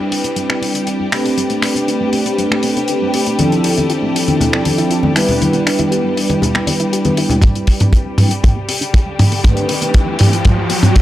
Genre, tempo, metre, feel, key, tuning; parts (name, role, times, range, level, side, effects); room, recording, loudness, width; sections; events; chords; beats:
nu-disco, nu disco; 119 BPM; 4/4; straight; A minor; A4 = 441 Hz
mellow synth brass; accompaniment; 0.0-10.3 s; F3 to B4; -16 LUFS; right 1 dB; chorus, sidechain pumping, analog delay
bright studio string section; sustained chords; 0.0-11.0 s; G3 to G4; -24 LUFS; left 3 dB; sidechain pumping, low-pass filter
soft round pluck; arpeggios; 0.0-11.0 s; G3 to G4; -25 LUFS; left 1 dB; chorus, sidechain pumping, tape echo
damped 70s drum kit; drums; 0.1-11.0 s; finger snaps, hi-hat, toms; -17 LUFS; equal; studio reverb
congas; percussion; 3.4-7.4 s; -19 LUFS; left 1 dB
kick drum; drums; 7.4-11.0 s; -10 LUFS; equal; studio reverb
riser; sound effects; 8.6-11.0 s; -22 LUFS; right 1 dB
light reverb, small room ambience; dry, gritty hardware recording, cassette tape; -12 LUFS; side -14 dB against mid
0.0-7.4 A section; 7.4-11.0 B section
filter sweep on synth arpeggio sound 0.0-7.4; build-up 7.4-11.0; drum fill 7.4-11.0; filter sweep on string section 7.4-11.0; riser 8.6-11.0
0.0 Cmaj9; 1.1 Am11; 3.4 Dm9; 5.2 Em7; 7.4 Cmaj9; 9.2 Am11
0.37 0.87 | 1.38 1.88 2.39 2.89 | 3.40 3.90 4.40 4.91 | 5.41 5.92 6.42 6.92 | 7.43 7.93 8.44 8.94 | 9.45 9.95 10.45 10.96